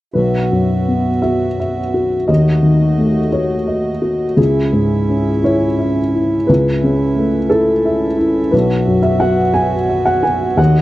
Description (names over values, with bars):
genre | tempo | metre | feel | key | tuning
neoclassical piano and strings | 58 BPM (dotted quarters) | 6/8 | rubato | unclear | A4 = 439 Hz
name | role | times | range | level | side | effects
dark upright piano | accompaniment | 0.1-10.8 s | B1 to G#5 | -13 LUFS | left 1 dB | none
pedal harmonium | sustained chords | 0.1-10.8 s | A3 to E5 | -23 LUFS | right 5 dB | none
room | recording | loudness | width
studio ambience | dry, close 1970s-style studio recording | -13 LUFS | side -16 dB against mid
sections
0.1-10.8 A section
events
none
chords
0.1 Bsus4; 2.3 D#dim; 4.4 C#m; 6.5 A/C#; 8.5 Bsus4